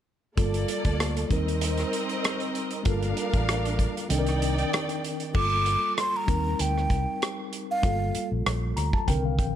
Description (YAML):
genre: lush 1970s-style soul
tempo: 96 BPM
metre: 4/4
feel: swing 54% on 16ths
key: G minor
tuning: A4 = 441 Hz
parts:
  - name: warm symphonic string section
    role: second line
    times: 0.4-5.3 s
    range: Bb3 to G5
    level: -31 LUFS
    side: right 2 dB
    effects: none
  - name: mellow tine electric piano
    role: accompaniment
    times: 0.4-9.6 s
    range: D3 to Bb5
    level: -31 LUFS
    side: left 2 dB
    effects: medium stereo tremolo
  - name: vintage muted fingered electric bass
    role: bass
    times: 0.4-9.6 s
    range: G1 to Eb2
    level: -28 LUFS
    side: equal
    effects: none
  - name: modern studio drum kit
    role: drums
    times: 0.4-9.5 s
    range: crash cymbal, hi-hat, kick drum, rim click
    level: -29 LUFS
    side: equal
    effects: none
  - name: breathy mellow concert flute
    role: melody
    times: 5.4-8.3 s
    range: F5 to D6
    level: -27 LUFS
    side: right 1 dB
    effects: none
room: studio ambience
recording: none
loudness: -24 LUFS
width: side -10 dB against mid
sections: 0.4-5.3 A section; 5.3-9.6 B section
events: tine electric piano fill 8.5-9.6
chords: 0.4 Gm9; 1.3 Eb6; 2.9 Gm9; 4.1 Cm9; 5.3 Gm9; 6.3 Eb6; 7.8 Gm9